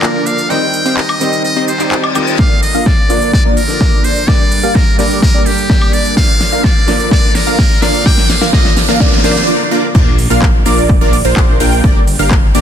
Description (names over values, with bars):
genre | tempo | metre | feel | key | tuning
EDM, festival progressive house | 127 BPM | 4/4 | straight | Bb major | A4 = 440 Hz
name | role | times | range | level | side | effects
trumpet with metal mute | melody | 0.0-9.5 s | G4 to G5 | -17 LUFS | equal | dub echo
bright concert grand piano | accompaniment | 0.0-10.0 s | G2 to F4 | -21 LUFS | left 2 dB | sidechain pumping
supersaw stab | riff | 0.0-12.6 s | Bb3 to G5 | -17 LUFS | right 1 dB | sidechain pumping, low-pass filter, dub echo
big-room dance drum kit | drums | 0.0-12.6 s | crash cymbal, handclaps, hi-hat, shaker, snare drum, woodblock | -19 LUFS | equal | soft clipping on snare
reverse cymbal, riser and sub drop | sound effects | 1.7-11.8 s | none | -23 LUFS | equal | none
plucky unison lead | arpeggios | 2.4-12.6 s | C5 to G5 | -20 LUFS | equal | analog chorus, sidechain pumping, dub echo
electronic kick drum | drums | 2.4-12.4 s | none | -11 LUFS | equal | overdrive
fat analog bass | bass | 9.9-12.6 s | G1 to Bb1 | -16 LUFS | equal | sidechain pumping
room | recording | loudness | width
light reverb | dense, heavily limited modern master | -9 LUFS | side -9 dB against mid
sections
0.0-2.4 A section; 2.4-9.9 B section; 9.9-12.6 C section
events
reverse cymbal 1.7-2.4; build-up 2.4-9.9; drum fill 2.4-9.5; riser 2.4-9.5; filter sweep on supersaw synth 2.4-9.9; filter sweep on digital synth lead 2.4-9.9; break 9.5-9.9; drop 9.9-12.6; impact 9.9-11.8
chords
0.0 Bb; 0.5 Cm; 2.4 Bb; 4.3 Gm; 6.2 Bb; 11.8 Gm